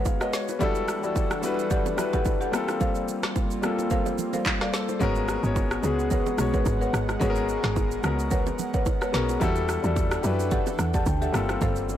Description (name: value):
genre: amapiano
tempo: 109 BPM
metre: 4/4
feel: swing 55% on 16ths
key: unclear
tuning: A4 = 440 Hz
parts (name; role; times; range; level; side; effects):
- warm baby grand piano; accompaniment; 0.0-12.0 s; G3 to A5; -28 LUFS; left 4 dB; none
- airy breathy pad; sustained chords; 0.0-12.0 s; E3 to F#5; -34 LUFS; right 3 dB; chorus
- buzzing marimba with medium hard mallets; stabs; 0.0-12.0 s; G3 to F#5; -33 LUFS; equal; ping-pong delay
- afro-pop drum kit; drums; 0.1-12.0 s; handclaps, kick drum, rim click, shaker, snare drum; -28 LUFS; right 1 dB; soft clipping on snare
- bongos and congas; percussion; 0.1-12.0 s; none; -36 LUFS; right 9 dB; none
- woody log drum bass; bass; 5.0-12.0 s; G1 to F#2; -28 LUFS; right 1 dB; none
room: studio reverb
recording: blown-out, overdriven recording, overdrive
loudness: -23 LUFS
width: side -11 dB against mid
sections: 0.0-12.0 A section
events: none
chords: 0.0 G#m11; 0.6 Em11; 2.5 Gm11; 5.0 G#m11; 9.4 Em11; 11.3 Gm11